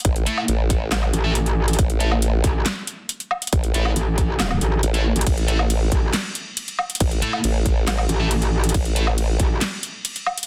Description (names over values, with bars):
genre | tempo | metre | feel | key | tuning
heavy wobble dubstep | 138 BPM | 4/4 | half-time | unclear | A4 = 442 Hz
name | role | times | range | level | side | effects
formant-sweep wobble bass | bass | 0.0-9.4 s | A1 | -23 LUFS | equal | chorus, overdrive
dubstep drum kit | drums | 0.0-10.5 s | crash cymbal, handclaps, hi-hat, snare drum, woodblock | -28 LUFS | equal | studio reverb
electronic kick drum | drums | 0.0-9.5 s | none | -23 LUFS | equal | overdrive, studio reverb
thick fuzz guitar | stabs | 0.3-9.1 s | A3 to A4 | -30 LUFS | equal | distortion, digital delay
metallic wobble bass | bass | 1.1-9.6 s | A1 | -22 LUFS | equal | chorus, overdrive
room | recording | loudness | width
little or no reverb | dense, heavily limited modern master | -21 LUFS | mono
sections
0.0-10.5 A section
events
none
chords
0.0 A5